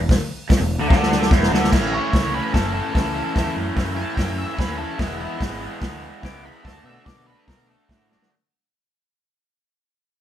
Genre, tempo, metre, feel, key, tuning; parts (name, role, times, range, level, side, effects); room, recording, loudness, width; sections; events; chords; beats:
garage rock duo or trio; 146 BPM; 4/4; straight; A4 = 440 Hz
raw garage guitar; riff; 0.0-8.3 s; E2 to F#4; -24 LUFS; equal; overdrive
growling picked electric bass; bass; 0.0-8.2 s; E1 to B2; -28 LUFS; equal; overdrive
vintage drum kit; drums; 0.1-8.3 s; crash cymbal, hi-hat, kick drum, snare drum; -20 LUFS; equal
octave-fuzz lead guitar; melody; 1.9-8.3 s; D4 to D6; -30 LUFS; left 2 dB; distortion
light reverb; band playing live in one room; -18 LUFS; side -11 dB against mid
0.0-1.7 A section; 1.7-8.3 B section
drum fill 0.9-1.7, 8.1; fade-out 1.7-8.3; lead electric guitar solo 1.7-8.3
0.0 E5; 1.7 A; 5.0 E; 6.6 D
| 0.09 0.50 0.91 1.31 | 1.72 2.13 2.54 2.94 | 3.35 3.76 4.17 4.58 | 5.00 5.41 5.82 6.23 | 6.65 7.06 7.47 7.89